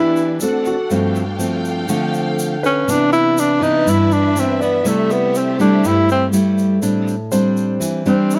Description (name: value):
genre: bossa nova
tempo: 122 BPM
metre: 4/4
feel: straight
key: C major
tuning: A4 = 441 Hz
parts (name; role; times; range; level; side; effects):
- breathy tenor saxophone; melody; 0.0-8.4 s; A3 to E4; -18 LUFS; equal; none
- nylon-string guitar; accompaniment; 0.0-8.4 s; G2 to G4; -20 LUFS; equal; none
- warm symphonic string section; sustained chords; 0.0-6.8 s; E3 to G5; -30 LUFS; equal; none
- tube shaker; percussion; 0.2-8.4 s; none; -34 LUFS; equal; none
- warm concert grand piano; accompaniment; 0.4-8.4 s; F#4 to D5; -28 LUFS; equal; none
room: light reverb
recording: close, detailed microphones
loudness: -17 LUFS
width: mono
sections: 0.0-6.8 A section; 6.8-8.4 A section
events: tenor saxophone solo 0.0-8.4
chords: 0.4 D7; 0.9 G9sus4; 2.9 Cmaj9; 4.9 C6; 6.8 Am7